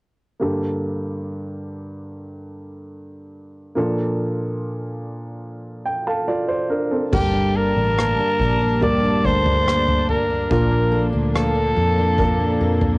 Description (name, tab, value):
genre	pop ballad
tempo	71 BPM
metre	4/4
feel	straight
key	unclear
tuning	A4 = 440 Hz
part	warm baby grand piano	accompaniment	0.4-13.0 s	G2 to A5	-24 LUFS	right 1 dB	cassette tape
part	raspy soprano saxophone	melody	7.1-13.0 s	G4 to D5	-21 LUFS	equal	cassette tape
part	warm studio string section	sustained chords	7.1-13.0 s	F3 to A5	-26 LUFS	equal	cassette tape
part	fingerpicked steel-string acoustic guitar	arpeggios	7.1-13.0 s	G2 to A4	-24 LUFS	left 1 dB	cassette tape
part	vintage muted fingered electric bass	bass	7.1-13.0 s	G1 to F2	-22 LUFS	equal	none
part	unplugged drum kit	drums	7.1-13.0 s	crash cymbal, kick drum, rim click, toms	-25 LUFS	equal	none
room	light reverb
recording	home recording on cassette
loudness	-18 LUFS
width	side -25 dB against mid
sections	0.4-7.1 A section; 7.1-13.0 B section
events	grand piano fill 5.4-7.1, 12.6-13.0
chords	0.4 Gmadd9; 3.8 Bbmaj7; 7.1 Gmadd9; 10.5 Bbmaj7